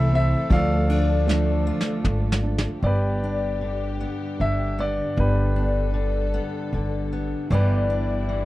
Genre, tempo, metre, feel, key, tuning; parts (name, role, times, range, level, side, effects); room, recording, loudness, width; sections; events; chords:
acoustic folk-pop ballad; 77 BPM; 3/4; straight; A4 = 441 Hz
clear baby grand piano; melody; 0.0-8.4 s; D4 to F5; -28 LUFS; equal
fingerpicked steel-string acoustic guitar; accompaniment; 0.0-8.4 s; D2 to G4; -28 LUFS; left 3 dB
warm studio string section; sustained chords; 0.0-8.4 s; D3 to A4; -33 LUFS; left 1 dB
felt-muted upright piano; arpeggios; 0.0-8.4 s; E3 to D4; -31 LUFS; right 3 dB
upright bass; bass; 0.0-8.4 s; G1 to D2; -23 LUFS; equal
vintage brush drum kit; drums; 0.5-2.8 s; kick drum, ride cymbal, snare drum, toms; -26 LUFS; equal
little or no reverb; -21 LUFS; side -17 dB against mid
0.0-2.8 A section; 2.8-8.4 B section
drum fill 1.3-2.8
0.0 Am; 0.5 Dm; 2.8 G; 7.5 Em7/G